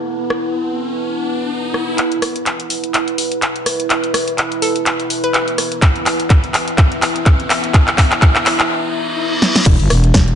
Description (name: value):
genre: bass house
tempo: 125 BPM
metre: 4/4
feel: swing 56% on 16ths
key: unclear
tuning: A4 = 440 Hz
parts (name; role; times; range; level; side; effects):
- deep dark ambient pad; sustained chords; 0.0-10.4 s; B3 to A5; -25 LUFS; left 2 dB; chorus, built-in reverb, sidechain pumping
- riser and reverse cymbal; sound effects; 0.0-9.7 s; none; -25 LUFS; left 1 dB; none
- warbly tape-like pad; texture; 0.0-10.4 s; E4 to F#5; -22 LUFS; right 3 dB; chorus, built-in reverb, sidechain pumping
- house drum kit; drums; 0.3-10.4 s; crash cymbal, handclaps, hi-hat, rim click, snare drum; -17 LUFS; equal; none
- hollow square pluck; melody; 4.6-5.4 s; A4 to B4; -21 LUFS; left 1 dB; chorus, tape echo
- electronic kick drum; drums; 5.8-10.2 s; none; -12 LUFS; equal; none
- growling FM bass; bass; 9.7-10.4 s; E1 to G1; -12 LUFS; equal; tube saturation, sidechain pumping
room: moderate digital room reverb, RT60 1.1 s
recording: nothing above 10.9 kHz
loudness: -13 LUFS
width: side -8 dB against mid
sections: 0.0-2.0 A section; 2.0-9.7 B section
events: riser 0.0-2.0, 2.0-9.7; build-up 2.0-9.7; drum fill 2.0-8.7, 9.4; filter sweep on ambient pad 2.0-9.7; break 8.7-9.7; reverse cymbal 8.7-9.7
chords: 0.0 E5